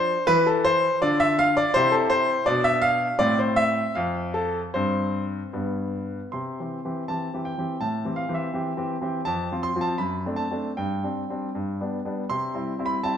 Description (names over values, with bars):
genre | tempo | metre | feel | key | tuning
classical-period piano sonatina | 75-84 BPM | 2/4 | rubato | C major | A4 = 441 Hz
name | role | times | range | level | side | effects
clear baby grand piano | solo | 0.0-13.2 s | F2 to C6 | -22 LUFS | equal | none
room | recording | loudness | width
wet recital hall reverb, RT60 1.5 s | dark, warm production | -22 LUFS | side -8 dB against mid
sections
0.0-6.3 A section; 6.3-13.2 B section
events
none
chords
0.3 N.C.; 1.0 Dmadd9; 1.8 C6; 2.5 Bdim; 3.2 F/A; 4.8 C5/G; 5.6 G; 6.3 C; 7.8 Am7; 9.3 F; 10.0 D7/F#; 10.8 Gsus4; 11.5 G; 12.3 C